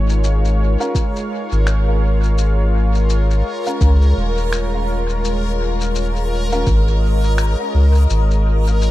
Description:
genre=ambient dub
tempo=84 BPM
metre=4/4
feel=swing 59% on 16ths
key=unclear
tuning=A4 = 445 Hz
part: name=warm analog pad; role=sustained chords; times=0.0-8.9 s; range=G#3 to E#5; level=-23 LUFS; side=equal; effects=chorus
part: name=soft dub sub bass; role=bass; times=0.0-8.9 s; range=D#1 to C#2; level=-15 LUFS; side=equal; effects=tube saturation
part: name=backwards swelling texture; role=texture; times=1.1-8.9 s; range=A#4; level=-28 LUFS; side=left 1 dB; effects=built-in reverb
part: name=electronic shaker and finger snaps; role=drums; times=0.1-8.9 s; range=none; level=-30 LUFS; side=left 2 dB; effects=dub echo
part: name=warm upright piano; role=stabs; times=0.8-6.6 s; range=C#4 to A#4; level=-28 LUFS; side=right 1 dB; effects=dub echo
part: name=electronic kick drum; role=drums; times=0.9-6.8 s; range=none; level=-19 LUFS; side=equal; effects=overdrive
room=little or no reverb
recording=echo-heavy mix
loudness=-14 LUFS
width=side -15 dB against mid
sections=0.0-8.9 A section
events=none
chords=0.0 A#m

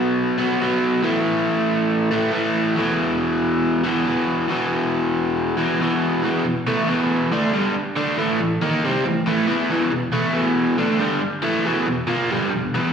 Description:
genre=rock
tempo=138 BPM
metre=4/4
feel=straight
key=unclear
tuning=A4 = 443 Hz
part: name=overdriven electric guitar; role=solo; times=0.0-12.9 s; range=E2 to E4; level=-18 LUFS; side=equal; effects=spring reverb, slapback echo
room=moderate club reverb, RT60 0.5 s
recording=live gig heard through the venue's PA, recital hall reverb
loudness=-18 LUFS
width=side -7 dB against mid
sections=0.0-6.2 A section; 6.2-12.9 B section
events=none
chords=0.0 B5; 1.0 A5; 2.8 E5; 8.0 A5; 9.7 E5

